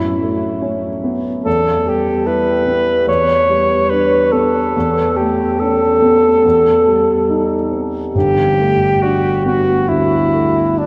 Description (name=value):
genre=classical, impressionist duo for alto saxophone and grand piano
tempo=64-76 BPM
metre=4/4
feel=rubato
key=unclear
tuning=A4 = 442 Hz
part: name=warm alto saxophone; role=melody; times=0.0-10.9 s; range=D4 to C#5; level=-16 LUFS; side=equal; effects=none
part: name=dark baby grand piano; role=accompaniment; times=0.0-10.9 s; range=G1 to E4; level=-20 LUFS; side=equal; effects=none
room=wet cathedral reverb, RT60 4.8 s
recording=none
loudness=-15 LUFS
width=mono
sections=0.0-10.9 A section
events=none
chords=0.0 F#m7; 1.5 Em; 3.1 G/E; 4.7 Aadd9/E; 6.4 Emadd11; 8.2 Gadd9